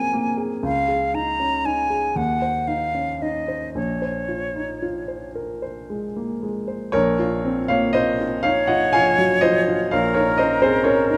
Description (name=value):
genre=classical, impressionist duo for flute and grand piano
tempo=37-42 BPM (dotted quarters)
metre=6/8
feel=rubato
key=Bb minor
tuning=A4 = 440 Hz
part: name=bright silver concert flute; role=melody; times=0.0-11.2 s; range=Bb4 to Bb5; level=-25 LUFS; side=equal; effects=none
part: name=warm grand piano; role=accompaniment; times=0.0-11.2 s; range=Bb1 to Ab5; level=-23 LUFS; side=equal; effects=none
room=light reverb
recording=close, detailed microphones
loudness=-21 LUFS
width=mono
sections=0.0-6.9 A section; 6.9-11.2 B section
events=none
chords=0.0 Gbadd9; 0.7 Dbsus2; 2.2 Ebm13; 3.8 Bbm11; 6.9 Bbmadd9; 9.9 Dbsus2/Bb